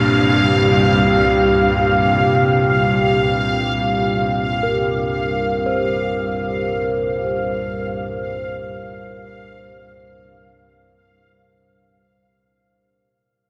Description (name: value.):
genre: dark ambient drone.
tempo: free time.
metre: none.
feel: none.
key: unclear.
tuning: A4 = 440 Hz.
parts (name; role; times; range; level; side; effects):
deep dark ambient pad; sustained chords; 0.0-12.4 s; C3 to F5; -22 LUFS; equal; chorus, built-in reverb.
bronze singing bowl; arpeggios; 0.0-11.9 s; Bb2 to C5; -26 LUFS; equal; diffuse ambient delay.
bowed-like drone; drone; 0.0-12.5 s; C2 to G2; -24 LUFS; equal; built-in reverb.
bubbling stepped-filter texture; texture; 0.0-12.4 s; F5; -24 LUFS; equal; chorus, built-in reverb.
room: wet huge ambient reverb, RT60 8.3 s.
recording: none.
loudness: -18 LUFS.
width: mono.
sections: 0.0-12.4 A section.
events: fade-out 1.3-12.4.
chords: 0.0 C5.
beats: free time.